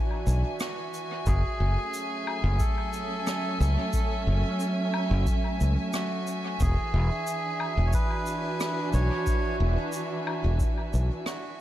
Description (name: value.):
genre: ambient dub.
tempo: 90 BPM.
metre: 4/4.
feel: straight.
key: E mixolydian.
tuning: A4 = 439 Hz.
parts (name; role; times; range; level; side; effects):
dark chamber string section; sustained chords; 0.0-11.6 s; E3 to G#5; -30 LUFS; right 1 dB; none.
modern bright fingered electric bass; bass; 0.3-11.1 s; E1 to C#2; -24 LUFS; equal; none.
shaker, rim click and woodblock; drums; 0.3-11.4 s; none; -38 LUFS; left 1 dB; dub echo.
melodica; melody; 0.6-11.6 s; F#4 to C#5; -35 LUFS; equal; dub echo.
electronic kick drum; drums; 1.3-10.7 s; none; -28 LUFS; equal; none.
room: light reverb, small room ambience.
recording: none.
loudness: -25 LUFS.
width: side -13 dB against mid.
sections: 0.0-11.6 A section.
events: fade-out 10.2-11.6.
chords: 0.0 E7; 1.3 F#m7; 6.6 E7.